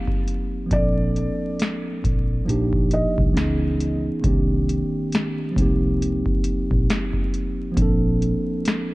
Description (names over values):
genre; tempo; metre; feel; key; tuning
lo-fi hip hop; 68 BPM; 4/4; swing 56% on 16ths; unclear; A4 = 443 Hz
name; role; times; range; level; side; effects
felt-muted upright piano; melody; 0.0-3.1 s; D5 to Eb5; -29 LUFS; equal; low-pass filter, tape echo
mellow tine electric piano; accompaniment; 0.0-8.9 s; Eb3 to A4; -24 LUFS; right 1 dB; cassette tape, low-pass filter
booming analog drum machine; drums; 0.1-8.9 s; hi-hat, kick drum, snare drum; -24 LUFS; equal; none
vintage muted fingered electric bass; bass; 0.7-8.3 s; Bb1 to Db2; -24 LUFS; equal; none
room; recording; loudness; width
light reverb; dark, warm production, vinyl crackle, nothing above 10.3 kHz; -19 LUFS; side -20 dB against mid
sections
0.0-8.9 A section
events
none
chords
0.0 F9sus4; 0.7 Bbmaj9; 2.5 Ebmaj9/Bb; 3.4 Dbm7; 4.2 Cm7; 5.6 F9sus4/C; 7.8 Bbmaj9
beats
| 0.71 1.59 2.47 3.36 | 4.24 5.12 6.00 6.89 | 7.77 8.65